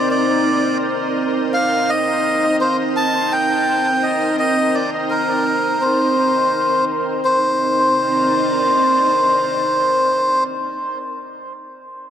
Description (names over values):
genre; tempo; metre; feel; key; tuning
ambient; 84 BPM; 4/4; swing 54% on 16ths; C minor; A4 = 440 Hz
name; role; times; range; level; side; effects
melodica; melody; 0.0-10.4 s; Bb4 to A5; -17 LUFS; equal; dub echo
soft additive organ-like pad; sustained chords; 0.0-10.8 s; C4 to D5; -20 LUFS; right 1 dB; ensemble chorus, built-in reverb
room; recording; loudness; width
moderate plate reverb, RT60 3.7 s; echo-heavy mix; -15 LUFS; side -9 dB against mid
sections
0.0-7.2 A section; 7.2-10.1 B section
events
none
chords
0.0 Cm7; 7.2 Cm9